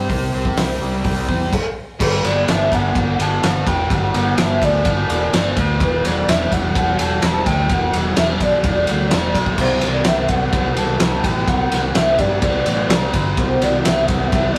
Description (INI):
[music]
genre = rock, shoegaze and dream pop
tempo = 127 BPM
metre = 4/4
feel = straight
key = G major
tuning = A4 = 440 Hz
[part]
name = fuzz guitar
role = riff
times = 0.0-14.6 s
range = C3 to C5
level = -24 LUFS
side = equal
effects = distortion
[part]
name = fingered electric bass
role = bass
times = 0.0-14.5 s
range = E1 to G2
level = -25 LUFS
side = equal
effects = none
[part]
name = loose indie drum kit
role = drums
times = 0.1-14.6 s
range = crash cymbal, hi-hat, kick drum, ride cymbal, snare drum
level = -22 LUFS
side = equal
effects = none
[part]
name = pure sine lead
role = melody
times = 2.0-14.6 s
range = B4 to A5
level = -23 LUFS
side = equal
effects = chorus, tremolo
[sound]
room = moderate stone room reverb, RT60 1.2 s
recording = rough rehearsal-room recording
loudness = -18 LUFS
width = mono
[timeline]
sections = 0.0-2.0 A section; 2.0-14.6 B section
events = stop 1.5-2.0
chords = 0.0 C; 2.0 Gmaj7; 5.8 Em7; 9.6 C